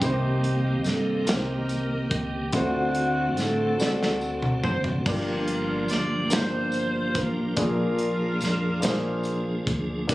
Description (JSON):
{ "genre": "slow gospel", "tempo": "48 BPM (dotted quarters)", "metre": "6/8", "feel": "straight", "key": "unclear", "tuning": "A4 = 440 Hz", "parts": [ { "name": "warm saxophone section", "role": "melody", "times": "0.0-10.1 s", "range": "A3 to D5", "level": "-29 LUFS", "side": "equal", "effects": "none" }, { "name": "dark concert grand piano", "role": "accompaniment", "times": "0.0-10.1 s", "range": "G2 to D5", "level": "-28 LUFS", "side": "left 1 dB", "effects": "none" }, { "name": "tonewheel organ", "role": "sustained chords", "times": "0.0-10.1 s", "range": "D3 to Ab4", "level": "-31 LUFS", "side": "right 2 dB", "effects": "fast rotary speaker, overdrive, chorus vibrato" }, { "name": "upright bass", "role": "bass", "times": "0.0-10.1 s", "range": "F#1 to A2", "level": "-30 LUFS", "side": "equal", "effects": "none" }, { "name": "modern studio drum kit", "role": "drums", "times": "0.0-10.1 s", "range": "crash cymbal, hi-hat, kick drum, snare drum, toms", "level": "-29 LUFS", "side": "equal", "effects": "none" }, { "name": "tambourine", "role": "percussion", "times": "0.0-10.1 s", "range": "none", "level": "-39 LUFS", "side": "left 2 dB", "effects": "none" } ], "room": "small room reverb", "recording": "recorded on a phone in the room, studio reverb", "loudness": "-23 LUFS", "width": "side -17 dB against mid", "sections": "0.0-10.1 A section", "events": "drum fill 3.8-5.1", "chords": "0.0 Cm7; 2.5 D7; 5.1 Gm7; 7.6 Bb7" }